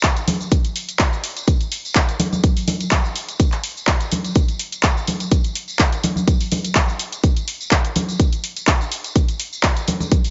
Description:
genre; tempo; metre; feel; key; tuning
house; 125 BPM; 4/4; swing 54% on 16ths; none; none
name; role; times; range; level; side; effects
electronic kick drum; drums; 0.0-10.2 s; none; -19 LUFS; equal; none
punchy analog drum machine; drums; 0.0-10.3 s; handclaps, hi-hat, shaker; -24 LUFS; equal; none
tambourine and congas; percussion; 0.0-10.3 s; none; -28 LUFS; equal; none
room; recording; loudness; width
light reverb; nothing above 7.7 kHz; -20 LUFS; mono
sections
0.0-10.3 A section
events
none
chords
none

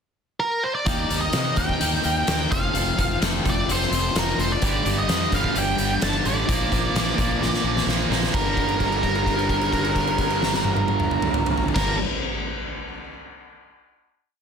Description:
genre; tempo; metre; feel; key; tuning
quiet-loud alternative rock; 129 BPM; 4/4; straight; G minor; A4 = 439 Hz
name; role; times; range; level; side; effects
octave-fuzz lead guitar; melody; 0.4-11.9 s; Bb4 to A5; -25 LUFS; right 2 dB; distortion, plate reverb
twangy electric guitar; arpeggios; 0.9-4.6 s; Eb3 to Bb4; -32 LUFS; right 8 dB; wide subtle chorus, plate reverb
thick fuzz guitar; riff; 0.9-12.0 s; F2 to Eb4; -29 LUFS; left 14 dB; distortion
fuzz fingered electric bass; bass; 0.9-11.9 s; F1 to C3; -28 LUFS; equal; overdrive
oversized low-tuned drum kit; drums; 0.9-11.9 s; crash cymbal, hi-hat, kick drum, snare drum, toms; -24 LUFS; equal; none
overdriven electric guitar; riff; 4.6-12.0 s; G2 to Bb3; -27 LUFS; right 12 dB; none
room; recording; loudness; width
moderate studio reverb, RT60 0.6 s; dense, heavily limited modern master; -20 LUFS; side -6 dB against mid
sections
0.0-0.9 pickup bar; 0.9-8.3 pre-chorus; 8.3-12.0 final chord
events
drum fill 7.4-8.3; held note 8.3-11.8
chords
0.0 N.C.; 0.9 Eb; 2.5 F; 4.6 G5; 6.5 Bb; 8.3 Gm

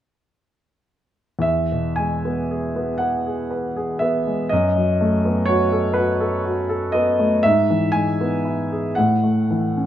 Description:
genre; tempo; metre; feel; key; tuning
classical, romantic nocturne for solo piano; 37-42 BPM (dotted quarters); 6/8; rubato; E major; A4 = 439 Hz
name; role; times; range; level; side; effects
warm grand piano; solo; 1.4-9.9 s; E2 to G#5; -18 LUFS; equal; none
room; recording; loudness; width
moderate large studio reverb, RT60 1.0 s; none; -18 LUFS; side -11 dB against mid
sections
1.4-9.9 A section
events
none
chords
1.4 E; 4.5 B7/F#; 7.4 E/G#; 9.0 F#m7/A

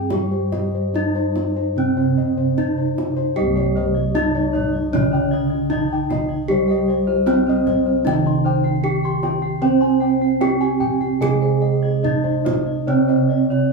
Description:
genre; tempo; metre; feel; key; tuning
Javanese gamelan; 75 BPM; 4/4; uneven beats; C pelog; A4 = 444 Hz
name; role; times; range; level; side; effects
gamelan-type bronze metallophone; melody; 0.0-13.7 s; C4 to C5; -22 LUFS; right 1 dB; none
gamelan-type bronze metallophone; accompaniment; 0.0-13.7 s; C3 to C4; -23 LUFS; right 4 dB; none
gamelan-type bossed gongs; arpeggios; 0.0-13.5 s; C5 to C6; -25 LUFS; left 6 dB; none
gamelan-type bossed gongs; bass; 0.0-13.7 s; C2 to C5; -23 LUFS; right 3 dB; none
kendang; percussion; 0.1-13.6 s; none; -29 LUFS; right 2 dB; none
gamelan-type bronze metallophone; arpeggios; 3.4-13.7 s; C5 to C6; -27 LUFS; left 5 dB; none
room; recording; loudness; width
wet small room reverb, RT60 0.5 s; band playing live in one room, small room ambience; -17 LUFS; side -3 dB against mid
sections
0.0-3.4 A section; 3.4-13.7 B section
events
none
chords
none

